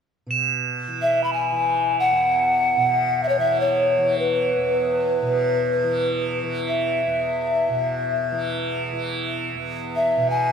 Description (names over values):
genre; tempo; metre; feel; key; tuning
world meditative, free-time meditation music; free time; none; none; unclear; A4 = 440 Hz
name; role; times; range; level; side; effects
tanpura; drone; 0.3-10.5 s; E2 to E3; -27 LUFS; right 2 dB; none
crotales; texture; 0.3-8.0 s; E7; -27 LUFS; right 9 dB; none
mellow hollow polished pan flute; melody; 1.0-10.5 s; B4 to B5; -20 LUFS; left 1 dB; diffuse ambient delay
room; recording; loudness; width
wet cathedral reverb, RT60 5.6 s; none; -19 LUFS; side -7 dB against mid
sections
0.3-10.5 A section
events
none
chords
none